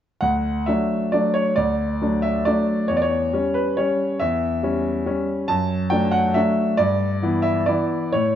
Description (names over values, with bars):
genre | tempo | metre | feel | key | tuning
classical, piano waltz | 136 BPM | 3/4 | uneven beats, rubato | D major | A4 = 440 Hz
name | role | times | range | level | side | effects
bright grand piano | solo | 0.2-8.4 s | D2 to A5 | -19 LUFS | equal | none
room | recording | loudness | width
moderate recital hall reverb, RT60 1.5 s | dark, warm production, nothing above 7.8 kHz | -19 LUFS | side -10 dB against mid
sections
0.2-8.4 A section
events
none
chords
0.2 D; 2.9 C#dim/E; 5.5 D/F#; 6.8 Em7/G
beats
| 0.21 0.67 1.13 | 1.56 2.01 2.46 | 2.90 3.33 3.77 | 4.21 4.62 5.06 | 5.49 5.92 6.36 | 6.79 7.22 7.68 | 8.14